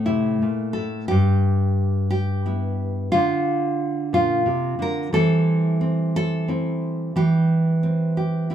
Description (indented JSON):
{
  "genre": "folk, solo fingerstyle acoustic guitar",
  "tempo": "59 BPM (dotted quarters)",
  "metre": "6/8",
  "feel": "straight",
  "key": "unclear",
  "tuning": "A4 = 440 Hz",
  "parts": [
    { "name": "nylon-string guitar", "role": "solo", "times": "0.0-8.5 s", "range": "G2 to Bb4", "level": "-19 LUFS", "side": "equal", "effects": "none" }
  ],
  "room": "moderate large studio reverb, RT60 1.1 s",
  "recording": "minimal, uncompressed stereo recording",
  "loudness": "-19 LUFS",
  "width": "side -10 dB against mid",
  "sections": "0.0-1.1 A section; 1.1-8.5 B section",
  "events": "none",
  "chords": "0.0 Am; 1.1 G6; 3.1 Dm; 5.1 C/E",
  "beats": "0.07 | 1.09 2.11 | 3.12 4.13 | 5.13 6.14 | 7.15 8.17"
}